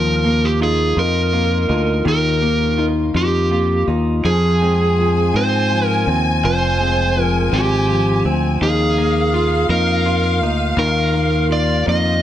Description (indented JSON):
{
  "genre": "six-eight pop ballad",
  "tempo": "55 BPM (dotted quarters)",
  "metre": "6/8",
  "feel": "straight",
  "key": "unclear",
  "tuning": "A4 = 441 Hz",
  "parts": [
    { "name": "overdriven slide guitar", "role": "melody", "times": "0.0-12.2 s", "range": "G4 to Eb5", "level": "-19 LUFS", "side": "right 1 dB", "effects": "none" },
    { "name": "felt-muted upright piano", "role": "accompaniment", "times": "0.0-12.2 s", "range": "Eb3 to F4", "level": "-22 LUFS", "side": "left 4 dB", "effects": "none" },
    { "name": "direct-recorded clean electric guitar", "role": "arpeggios", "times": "0.0-12.2 s", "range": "Eb3 to F4", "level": "-26 LUFS", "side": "right 6 dB", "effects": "lush chorus" },
    { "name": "fingered electric bass", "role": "bass", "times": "0.0-12.2 s", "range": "F1 to Ab2", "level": "-19 LUFS", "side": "equal", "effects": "none" },
    { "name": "warm studio violin section", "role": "second line", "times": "4.3-12.2 s", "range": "F5 to Ab5", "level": "-23 LUFS", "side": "left 1 dB", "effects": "none" }
  ],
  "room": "light reverb, small room ambience",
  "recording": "none",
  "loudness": "-14 LUFS",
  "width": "side -11 dB against mid",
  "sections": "0.0-12.2 A section",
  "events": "none",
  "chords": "0.0 Ebsus2; 4.3 Fm; 8.6 Ebsus2",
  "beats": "0.97 | 2.06 3.15 | 4.25 5.35 | 6.44 7.53 | 8.61 9.70 | 10.78 11.87"
}